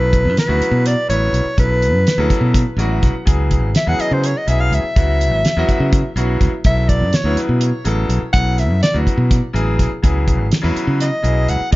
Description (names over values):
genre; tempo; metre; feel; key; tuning
electric jazz fusion; 248 BPM (eighths); 7/8; straight; unclear; A4 = 440 Hz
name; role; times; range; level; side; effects
warm soprano saxophone; melody; 0.0-11.8 s; B4 to F#5; -20 LUFS; equal; tape echo
bright concert grand piano; accompaniment; 0.0-11.8 s; C#3 to F#5; -22 LUFS; left 1 dB; none
fingered electric bass; bass; 0.0-11.8 s; G#1 to C#3; -17 LUFS; equal; none
damped 70s drum kit; drums; 0.1-11.8 s; hi-hat, kick drum, snare drum; -18 LUFS; equal; none
room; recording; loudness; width
moderate club reverb, RT60 0.6 s; nothing above 7.5 kHz; -14 LUFS; side -19 dB against mid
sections
0.0-11.8 A section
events
soprano saxophone solo 0.0-11.8; grand piano fill 2.5-3.3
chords
0.0 B7sus2; 3.3 C#m7; 6.6 B7sus2; 10.0 C#m9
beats
0.13 0.37 0.61 0.85 1.09 1.34 | 1.58 1.82 2.06 2.30 2.54 2.79 3.03 | 3.27 3.51 3.75 3.99 4.23 4.47 4.72 | 4.96 5.20 5.44 5.68 5.92 6.16 6.41 | 6.65 6.89 7.13 7.37 7.61 7.85 8.10 | 8.34 8.58 8.82 9.06 9.30 9.55 9.79 | 10.03 10.27 10.51 10.76 11.00 11.24 11.48 | 11.73